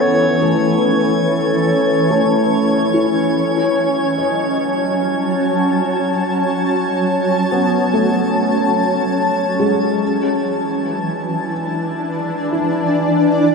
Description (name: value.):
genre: ambient.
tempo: 72 BPM.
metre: 4/4.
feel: straight.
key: unclear.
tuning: A4 = 440 Hz.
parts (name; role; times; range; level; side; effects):
mellow clarinet; melody; 0.0-2.5 s; A4 to C#5; -21 LUFS; equal; shimmer reverb, ping-pong delay.
shimmering ambient pad; sustained chords; 0.0-13.5 s; E3 to A5; -16 LUFS; equal; chorus, built-in reverb, shimmer reverb.
felt-muted upright piano; arpeggios; 0.0-13.5 s; G#3 to C#6; -21 LUFS; left 1 dB; analog chorus, shimmer reverb, ping-pong delay.
drifting glass-harmonics texture; texture; 0.0-13.5 s; G#6; -32 LUFS; right 1 dB; chorus, built-in reverb, shimmer reverb.
room: wet lush hall reverb, RT60 2.8 s.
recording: dreamy mix soaked in reverb.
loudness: -14 LUFS.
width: side -4 dB against mid.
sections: 0.0-13.5 A section.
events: fade-out on synth texture 0.0-13.5.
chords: 0.0 Amaj7; 3.4 F#m; 10.0 Dsus2.